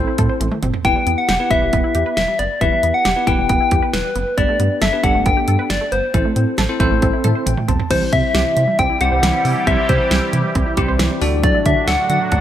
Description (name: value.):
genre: synth-pop.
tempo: 136 BPM.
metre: 4/4.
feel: straight.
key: unclear.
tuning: A4 = 440 Hz.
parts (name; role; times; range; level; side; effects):
bell-like tine electric piano; accompaniment; 0.0-11.9 s; B3 to A5; -23 LUFS; left 2 dB; fast stereo tremolo.
wide unison pluck; arpeggios; 0.0-12.4 s; E3 to C5; -25 LUFS; right 3 dB; tape echo.
round analog bass; bass; 0.0-12.4 s; E1 to D3; -21 LUFS; equal; none.
pop drum kit; drums; 0.2-12.4 s; crash cymbal, hi-hat, kick drum, snare drum, toms; -20 LUFS; right 1 dB; none.
soft struck synth lead; melody; 0.8-12.4 s; B4 to G5; -18 LUFS; left 2 dB; chorus, tremolo.
sweeping resonant pad; sustained chords; 7.9-12.4 s; A2 to G4; -23 LUFS; right 1 dB; chorus.
room: light reverb.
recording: none.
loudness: -14 LUFS.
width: side -11 dB against mid.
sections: 0.0-7.9 A section; 7.9-12.4 B section.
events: drum fill 0.4-0.8, 7.0-7.9; tine electric piano fill 7.0-7.9.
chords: 0.0 Am; 0.8 Em; 4.4 Gadd9; 6.1 Am; 7.9 C; 11.2 D.